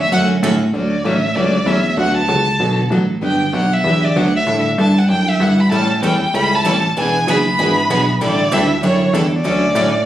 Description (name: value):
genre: acoustic string swing (jazz manouche)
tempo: 193 BPM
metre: 4/4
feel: swing 61% on 8ths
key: D major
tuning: A4 = 440 Hz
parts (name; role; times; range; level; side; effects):
- warm violin; melody; 0.0-10.1 s; C#5 to B5; -18 LUFS; equal; plate reverb
- plucky analog bass; bass; 0.0-10.1 s; E1 to A2; -17 LUFS; right 1 dB; none
- picked plugged-in steel-string acoustic guitar; accompaniment; 0.1-9.9 s; D3 to A4; -19 LUFS; left 1 dB; none
- picked swing-style acoustic guitar; accompaniment; 0.1-0.5, 5.7-9.9 s; D3 to B4; -22 LUFS; right 2 dB; none
room: moderate studio reverb, RT60 0.8 s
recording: recorded on a phone in the room, studio reverb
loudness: -13 LUFS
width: side -12 dB against mid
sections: 0.7-10.1 A section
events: none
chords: 0.0 Dmaj7; 2.0 Bm7; 3.2 Gmaj7; 4.5 A7sus4; 5.7 A7; 7.0 E7; 8.2 A7sus4; 9.4 Dmaj7